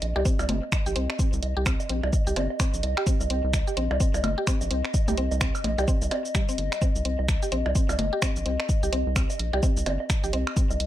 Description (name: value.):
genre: minimal techno.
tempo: 128 BPM.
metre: 4/4.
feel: swing 60% on 16ths.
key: C minor.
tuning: A4 = 439 Hz.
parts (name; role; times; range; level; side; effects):
rubbery square bass; bass; 0.0-10.9 s; G1 to C2; -28 LUFS; equal; sidechain pumping.
punchy analog drum machine; drums; 0.0-10.9 s; finger snaps, hi-hat, shaker; -32 LUFS; right 1 dB; none.
woodblock and percussion blips; percussion; 0.0-10.8 s; none; -32 LUFS; right 3 dB; ping-pong delay.
warbly tape-like pad; texture; 0.0-10.9 s; Eb5; -34 LUFS; left 2 dB; chorus, built-in reverb, sidechain pumping.
mallet-like synth pluck; riff; 0.2-10.6 s; G3 to G4; -32 LUFS; left 1 dB; chorus, sidechain pumping, tape echo.
electronic kick drum; drums; 0.3-10.7 s; none; -25 LUFS; equal; none.
room: digital ambience.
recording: none.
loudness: -23 LUFS.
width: side -13 dB against mid.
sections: 0.0-10.9 A section.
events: none.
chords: 0.0 Cm.